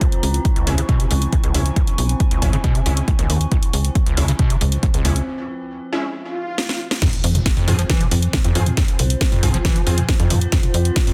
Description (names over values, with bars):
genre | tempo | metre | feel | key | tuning
driving peak-time techno | 137 BPM | 4/4 | straight | F harmonic minor | A4 = 439 Hz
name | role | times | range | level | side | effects
overdriven acid bass | riff | 0.0-11.1 s | Db2 to F3 | -25 LUFS | equal | subtle chorus, sidechain pumping, digital delay
metallic inharmonic drone | drone | 0.0-11.1 s | F3 to C4 | -36 LUFS | equal | chorus, built-in reverb, sidechain pumping
electronic kick drum | drums | 0.0-11.1 s | none | -21 LUFS | equal | none
techno drum kit | drums | 0.0-11.1 s | crash cymbal, hi-hat, snare drum, toms | -26 LUFS | equal | sidechain pumping on hats, sidechain pumping on toms, sidechain pumping on cymbals
warbly tape-like pad | texture | 0.0-11.1 s | Fb4 to Db6 | -34 LUFS | equal | chorus, built-in reverb, sidechain pumping
tight sequencer bass | bass | 0.2-10.9 s | Ab1 to F2 | -21 LUFS | equal | sidechain pumping
rave stab | stabs | 0.7-10.0 s | Ab3 to Ab4 | -31 LUFS | equal | chorus, built-in reverb, sidechain pumping, digital delay
swell and impact | sound effects | 6.3-8.8 s | none | -30 LUFS | equal | none
room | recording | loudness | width
light reverb | dense, heavily limited modern master | -18 LUFS | mono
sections
0.0-7.0 A section; 7.0-11.1 B section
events
filter sweep on acid bass 0.0-7.0; break 5.3-7.0; swell 6.3-7.0; drum fill 6.6-7.0; drop 7.0-11.1; impact 7.0-8.8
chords
0.0 Dbm; 7.0 Fm